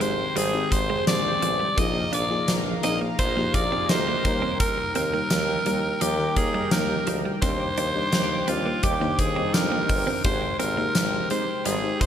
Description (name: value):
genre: 1980s-style pop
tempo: 85 BPM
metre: 4/4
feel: straight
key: unclear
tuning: A4 = 439 Hz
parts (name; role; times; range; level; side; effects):
- raspy alto saxophone; melody; 0.0-12.1 s; F4 to Eb5; -26 LUFS; right 1 dB; shimmer reverb
- FM electric piano; accompaniment; 0.0-12.1 s; Eb3 to C5; -30 LUFS; left 5 dB; chorus, shimmer reverb
- chorused pulse-width pad; sustained chords; 0.0-12.1 s; Bb4 to D6; -35 LUFS; equal; shimmer reverb
- direct-recorded clean electric guitar; riff; 0.0-12.0 s; F3 to D4; -33 LUFS; right 5 dB; wide subtle chorus, shimmer reverb
- mellow synth brass; stabs; 0.0-11.8 s; G3 to C5; -35 LUFS; right 1 dB; chorus, phaser, shimmer reverb, digital delay
- clear tuba; bass; 0.0-12.1 s; G1 to F2; -31 LUFS; equal; none
- huge arena drum kit; drums; 0.0-12.1 s; hi-hat, kick drum, snare drum, tambourine; -27 LUFS; equal; gated reverb
room: moderate plate reverb, RT60 2.8 s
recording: bright 1980s-style digital production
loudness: -21 LUFS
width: side -9 dB against mid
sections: 0.0-12.1 A section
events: none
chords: 0.0 Abmaj7; 1.8 Bb7sus4; 4.2 Eb; 7.4 Cmadd9/Eb; 10.2 Abmaj7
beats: 0.37 1.07 | 1.78 2.48 3.19 3.90 | 4.60 5.31 6.01 6.72 | 7.42 8.13 8.84 9.54 | 10.25 10.95 11.66